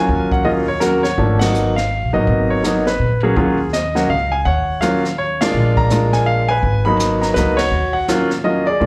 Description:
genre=jazz piano trio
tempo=165 BPM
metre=3/4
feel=swing 63% on 8ths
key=Eb minor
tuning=A4 = 439 Hz
part: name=clear concert grand piano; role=melody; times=0.0-8.9 s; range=F3 to Cb6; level=-18 LUFS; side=equal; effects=slapback echo
part: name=upright bass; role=bass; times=0.1-8.9 s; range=Ab1 to Bb2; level=-22 LUFS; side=equal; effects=none
part: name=jazz brush drum kit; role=drums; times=0.1-8.9 s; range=brushed snare drum, hi-hat, kick drum, ride cymbal, snare drum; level=-28 LUFS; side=equal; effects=none
room=light reverb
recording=live gig heard through the venue's PA, club reverb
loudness=-17 LUFS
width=mono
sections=0.0-8.9 A section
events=band accent 1.4, 5.4, 7.5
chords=0.0 Ebm9; 1.2 Abm7; 3.4 Ebm9; 5.5 Bb7; 6.6 Abm7; 7.7 Ebm9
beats=| 0.08 0.45 0.81 | 1.17 1.54 1.90 | 2.26 2.63 2.99 | 3.35 3.72 4.08 | 4.45 4.81 5.17 | 5.54 5.90 6.26 | 6.63 6.99 7.35 | 7.72 8.08 8.44 | 8.81

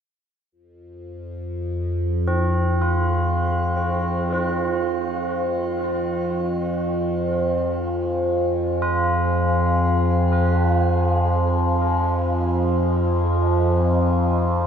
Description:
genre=dark ambient drone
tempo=free time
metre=none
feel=none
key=unclear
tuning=A4 = 440 Hz
part: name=deep dark ambient pad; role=sustained chords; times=3.6-14.7 s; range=F4 to Ab5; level=-32 LUFS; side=right 3 dB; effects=chorus, built-in reverb, shimmer reverb
part: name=overtone-sweeping drone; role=drone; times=1.0-14.7 s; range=F2 to F3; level=-20 LUFS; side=equal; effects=chorus, built-in reverb, phaser
part: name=tubular bells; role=arpeggios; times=2.3-14.7 s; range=C4 to F4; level=-26 LUFS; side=equal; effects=tape echo, shimmer reverb
room=wet plate reverb, RT60 2.8 s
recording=echo-heavy mix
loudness=-19 LUFS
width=side -8 dB against mid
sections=0.5-14.7 A section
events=fade-in on ambient pad 0.5-14.7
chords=0.5 Fm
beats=free time

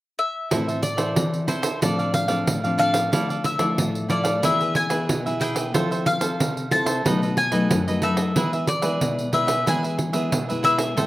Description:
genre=samba and choro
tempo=92 BPM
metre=4/4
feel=straight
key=unclear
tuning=A4 = 437 Hz
part: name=mandolin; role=melody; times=0.2-11.1 s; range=C5 to A5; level=-24 LUFS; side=left 1 dB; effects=slapback echo
part: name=cavaquinho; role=accompaniment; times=0.5-11.1 s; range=D4 to G5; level=-28 LUFS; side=right 3 dB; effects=slapback echo
part: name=nylon-string guitar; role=accompaniment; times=0.5-11.1 s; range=F#2 to A4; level=-25 LUFS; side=left 2 dB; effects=none
part: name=pandeiro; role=percussion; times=0.5-11.1 s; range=none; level=-25 LUFS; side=right 2 dB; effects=none
room=little or no reverb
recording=recorded outdoors, with no room sound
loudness=-20 LUFS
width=side -16 dB against mid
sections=0.5-11.1 A section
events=none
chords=0.0 N.C.; 0.5 Am; 1.8 F6/A; 3.1 Dmadd9; 4.4 E; 5.7 Fmaj7; 7.1 B7; 8.4 E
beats=| 0.51 1.17 1.82 2.48 | 3.13 3.78 4.44 5.09 | 5.74 6.40 7.05 7.71 | 8.36 9.02 9.67 10.32 | 10.98

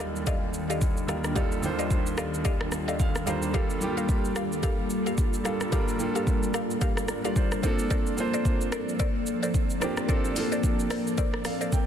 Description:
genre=amapiano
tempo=110 BPM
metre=4/4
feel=swing 58% on 16ths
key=Bb major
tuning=A4 = 440 Hz
part: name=warm concert grand piano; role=accompaniment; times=0.0-11.9 s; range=Eb2 to Bb5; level=-31 LUFS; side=right 2 dB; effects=none
part: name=ethereal airy pad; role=sustained chords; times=0.1-11.9 s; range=Eb3 to D5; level=-31 LUFS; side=left 1 dB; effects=ensemble chorus, built-in reverb, sidechain pumping
part: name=mallet-like synth pluck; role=stabs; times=0.0-11.7 s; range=G4 to F5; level=-34 LUFS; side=left 1 dB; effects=chorus, phaser, tape echo
part: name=afro-pop drum kit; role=drums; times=0.2-11.9 s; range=hi-hat, kick drum, rim click, shaker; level=-28 LUFS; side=equal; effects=none
room=light reverb, digital ambience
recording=dense, heavily limited modern master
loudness=-24 LUFS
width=side -9 dB against mid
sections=0.0-11.9 A section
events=grand piano fill 2.7-3.5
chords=0.0 Ebmaj9#11; 3.5 Gm9; 7.6 Bbmaj9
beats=0.27 0.82 | 1.36 1.91 2.45 3.00 | 3.54 4.09 4.63 5.18 | 5.72 6.27 6.82 7.36 | 7.91 8.45 9.00 9.54 | 10.09 10.63 11.18 11.72

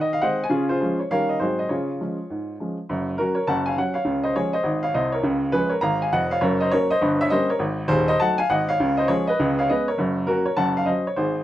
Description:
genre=jazz, stride piano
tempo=203 BPM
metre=4/4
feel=swing 63% on 8ths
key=Db major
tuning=A4 = 441 Hz
part: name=warm upright piano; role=solo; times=0.0-11.4 s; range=Eb1 to Bb5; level=-20 LUFS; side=equal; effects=none
room=light reverb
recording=none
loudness=-20 LUFS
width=side -13 dB against mid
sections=0.0-2.9 A section; 2.9-11.4 B section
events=none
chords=0.0 Ab/Eb; 0.5 Db; 1.1 Eb7; 1.4 Ab7; 1.7 Db; 2.9 Gb; 3.5 Gb5; 4.1 Db; 6.4 Gb; 7.0 Gdim; 7.6 Ab7b9; 8.8 Db; 9.4 Db5; 10.0 Gb; 10.6 Gb5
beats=0.22 | 0.52 0.81 1.11 1.41 | 1.70 2.00 2.29 2.59 | 2.88 3.18 3.48 3.77 | 4.07 4.36 4.66 4.95 | 5.25 5.54 5.84 6.14 | 6.43 6.73 7.02 7.32 | 7.61 7.91 8.21 8.50 | 8.80 9.09 9.39 9.68 | 9.98 10.27 10.57 10.87 | 11.16

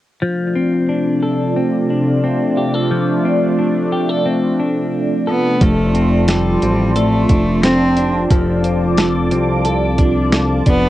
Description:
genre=dream pop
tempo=89 BPM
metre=4/4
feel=straight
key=F major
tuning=A4 = 440 Hz
part: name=phased analog pad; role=sustained chords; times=0.2-10.9 s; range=C3 to D6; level=-19 LUFS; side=right 2 dB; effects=phaser, chorus
part: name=clean electric guitar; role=arpeggios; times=0.2-10.9 s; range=F3 to A4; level=-18 LUFS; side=left 2 dB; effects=wide subtle chorus, analog delay
part: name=rich cello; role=melody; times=5.3-10.9 s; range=G3 to C4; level=-17 LUFS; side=equal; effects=analog delay
part: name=chorused synth bass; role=bass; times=5.6-10.9 s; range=F1 to C2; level=-18 LUFS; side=equal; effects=none
part: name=crisp 8-bit digital drum machine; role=drums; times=5.6-10.8 s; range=hi-hat, kick drum, snare drum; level=-16 LUFS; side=equal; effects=vintage 12-bit sampler grit
room=light reverb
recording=worn, warbling old tape, cassette tape, warbly pitch drift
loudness=-13 LUFS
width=side -14 dB against mid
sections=0.2-5.6 A section; 5.6-10.9 B section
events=none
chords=0.2 F6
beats=| 0.22 0.89 1.56 2.24 | 2.91 3.59 4.26 4.94 | 5.61 6.28 6.96 7.63 | 8.31 8.98 9.65 10.33

